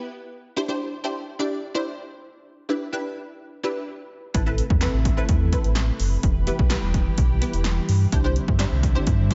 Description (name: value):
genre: dance-pop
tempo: 127 BPM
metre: 4/4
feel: straight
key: A minor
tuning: A4 = 439 Hz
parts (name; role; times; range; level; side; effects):
- unison pluck; accompaniment; 0.0-9.3 s; B3 to D5; -31 LUFS; equal; ensemble chorus, sidechain pumping
- lush unison pad; sustained chords; 4.3-9.3 s; C3 to B4; -34 LUFS; equal; chorus, sidechain pumping
- sub bass with octave; bass; 4.3-9.3 s; E1 to G2; -24 LUFS; equal; sidechain pumping
- punchy analog drum machine; drums; 4.3-9.3 s; handclaps, hi-hat, kick drum, snare drum; -25 LUFS; equal; none
room: light reverb, digital ambience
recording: nothing above 7.7 kHz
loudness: -23 LUFS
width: mono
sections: 0.0-9.3 A section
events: none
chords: 0.0 Em; 0.6 Cadd9; 2.5 G6; 4.3 Amadd9; 6.2 Em; 8.1 Cadd9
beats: 0.09 | 0.57 1.04 1.51 1.98 | 2.46 2.93 3.40 3.87 | 4.34 4.82 5.29 5.76 | 6.24 6.71 7.18 7.65 | 8.12 8.60 9.07